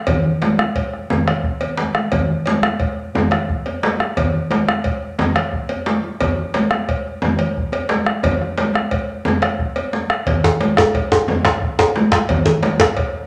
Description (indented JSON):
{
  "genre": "west african traditional, West African drum ensemble",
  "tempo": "118 BPM (dotted quarters)",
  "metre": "12/8",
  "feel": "straight",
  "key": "none",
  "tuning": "none",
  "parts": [
    { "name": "bombo", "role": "percussion", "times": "0.1-13.1 s", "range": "none", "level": "-24 LUFS", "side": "equal", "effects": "none" },
    { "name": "congas", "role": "percussion", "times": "0.1-12.8 s", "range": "none", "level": "-24 LUFS", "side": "equal", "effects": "none" },
    { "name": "cowbell", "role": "percussion", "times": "0.1-13.1 s", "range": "none", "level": "-28 LUFS", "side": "equal", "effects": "none" },
    { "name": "djembe", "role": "percussion", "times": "0.1-13.1 s", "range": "none", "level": "-26 LUFS", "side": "equal", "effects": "none" },
    { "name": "djembe", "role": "percussion", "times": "10.4-13.0 s", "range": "none", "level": "-19 LUFS", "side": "equal", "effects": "none" }
  ],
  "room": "wet large studio reverb, RT60 1.1 s",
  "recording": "none",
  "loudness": "-18 LUFS",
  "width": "mono",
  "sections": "0.0-10.3 A section; 10.3-13.3 B section",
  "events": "drum fill 1.6-2.1",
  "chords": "none"
}